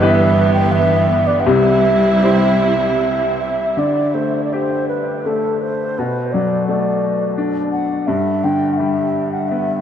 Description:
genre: celtic folk, Celtic slow air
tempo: 77-87 BPM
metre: 3/4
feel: rubato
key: D mixolydian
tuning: A4 = 439 Hz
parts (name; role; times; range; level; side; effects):
- mellow baroque flute; melody; 0.0-9.8 s; A4 to G5; -19 LUFS; right 1 dB; diffuse ambient delay
- bright upright piano; accompaniment; 0.0-9.8 s; G1 to C5; -18 LUFS; left 2 dB; lush chorus
- clear symphonic string section; sustained chords; 0.0-3.7 s; G2 to E4; -18 LUFS; right 2 dB; none
room: wet huge ambient reverb, RT60 9.6 s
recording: dreamy mix soaked in reverb, nothing above 10.3 kHz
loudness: -14 LUFS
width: side -9 dB against mid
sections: 0.0-3.8 A section; 3.8-9.8 B section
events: none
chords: 0.0 Em/G; 1.5 C; 3.8 Dsus4; 6.0 Bm7; 8.1 G6

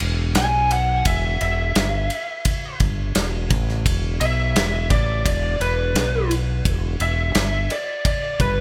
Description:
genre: blues rock power trio and southern rock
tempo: 86 BPM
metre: 4/4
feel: straight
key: unclear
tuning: A4 = 440 Hz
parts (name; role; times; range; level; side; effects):
- growling fingered electric bass; bass; 0.0-8.6 s; E1 to B1; -25 LUFS; equal; overdrive
- big rock drum kit; drums; 0.0-8.6 s; kick drum, ride cymbal, snare drum; -25 LUFS; equal; none
- lead guitar through a small cranked amp; second line; 0.4-8.6 s; B4 to G#5; -26 LUFS; equal; overdrive, digital delay
room: light reverb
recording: none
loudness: -21 LUFS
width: mono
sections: 0.0-8.6 A section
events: lead electric guitar solo 0.0-8.6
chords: 0.4 B5; 1.1 E5; 6.0 N.C.; 6.7 E5

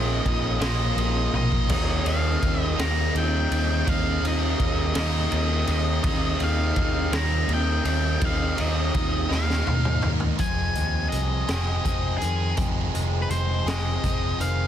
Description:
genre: quiet-loud alternative rock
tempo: 55 BPM (dotted quarters)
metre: 6/8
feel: straight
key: F minor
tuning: A4 = 440 Hz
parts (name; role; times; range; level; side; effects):
- octave-fuzz lead guitar; melody; 0.0-14.7 s; Ab4 to Bb5; -30 LUFS; left 1 dB; distortion, analog delay
- biting overdriven guitar; riff; 0.0-14.7 s; F2 to Ab4; -30 LUFS; right 2 dB; none
- overdriven electric guitar; riff; 0.0-10.4 s; Bb2 to Eb4; -31 LUFS; left 2 dB; none
- overdriven picked electric bass; bass; 0.0-14.7 s; F1 to F2; -26 LUFS; equal; none
- raw garage drum kit; drums; 0.3-14.6 s; crash cymbal, hi-hat, kick drum, ride cymbal, snare drum, toms; -27 LUFS; equal; none
- picked steel-string acoustic guitar; arpeggios; 10.4-14.7 s; F2 to Ab4; -34 LUFS; left 10 dB; none
room: little or no reverb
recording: dense, heavily limited modern master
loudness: -21 LUFS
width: side -10 dB against mid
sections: 0.0-10.4 A section; 10.4-14.7 B section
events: drum fill 1.3-1.7, 9.3-10.4; lead electric guitar solo 10.4-14.7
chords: 0.0 Bbsus4; 1.7 Ebadd9; 10.4 Fm7

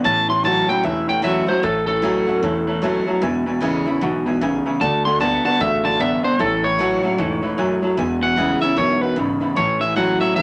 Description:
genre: rockabilly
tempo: 151 BPM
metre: 4/4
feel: swing 61% on 8ths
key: A major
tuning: A4 = 441 Hz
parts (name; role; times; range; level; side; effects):
- picked steel-string acoustic guitar; accompaniment; 0.0-10.4 s; E2 to F#4; -29 LUFS; equal; none
- tack piano; accompaniment; 0.0-10.4 s; B4 to B5; -31 LUFS; equal; none
- electric guitar through a small old amp; riff; 0.0-10.4 s; E2 to B3; -23 LUFS; equal; none
- electric guitar at the edge of break-up; melody; 0.1-10.4 s; A4 to C6; -22 LUFS; equal; none
- upright bass; bass; 0.1-10.4 s; E1 to D2; -33 LUFS; equal; none
room: moderate studio reverb, RT60 0.6 s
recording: none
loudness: -19 LUFS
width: mono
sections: 0.0-9.6 A section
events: clean electric guitar solo 0.0-9.6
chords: 0.0 A6; 3.2 E6; 4.8 D6; 6.4 A6; 8.0 E6; 9.6 A6

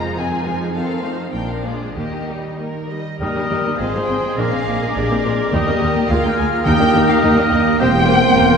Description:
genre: quick classical-period movement for symphony orchestra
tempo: 94-107 BPM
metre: 2/4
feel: rubato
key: Eb major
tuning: A4 = 439 Hz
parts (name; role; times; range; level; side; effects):
- muted chamber violin section; melody; 0.0-8.6 s; D5 to Bb5; -23 LUFS; left 2 dB; none
- muted symphonic violin section; second line; 0.0-8.4 s; D4 to Eb5; -26 LUFS; left 2 dB; none
- muted symphonic viola section; accompaniment; 0.0-8.4 s; Eb3 to F4; -24 LUFS; equal; none
- muted chamber cello section; bass; 0.0-8.6 s; D2 to Eb3; -24 LUFS; right 1 dB; none
- muted chamber double bass section; bass; 0.0-8.6 s; E1 to Eb2; -23 LUFS; right 1 dB; none
- bright small flute group; second line; 3.2-8.6 s; C6 to F6; -25 LUFS; left 4 dB; none
- warm oboe; second line; 3.2-8.6 s; Ab4 to C5; -24 LUFS; equal; none
- mellow bassoon; accompaniment; 3.2-8.6 s; G3 to Bb3; -24 LUFS; right 4 dB; none
- dark French horn section; sustained chords; 3.2-8.6 s; Bb3 to Ab4; -22 LUFS; equal; none
- mellow clarinet; second line; 3.8-8.6 s; F4 to C5; -26 LUFS; equal; none
- timpani; percussion; 5.5-7.5 s; Eb3; -26 LUFS; right 2 dB; none
room: wet concert hall reverb, RT60 2.2 s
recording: heard from further back in the room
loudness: -15 LUFS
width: side -6 dB against mid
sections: 0.0-3.2 A section; 3.2-8.6 B section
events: none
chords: 0.0 Fm7; 0.7 F7; 1.3 Bb7; 2.0 Eb; 3.8 Fm/Ab; 4.4 Bb7; 5.5 Eb; 6.1 Bb7/D; 6.7 Eb; 7.8 C7/E

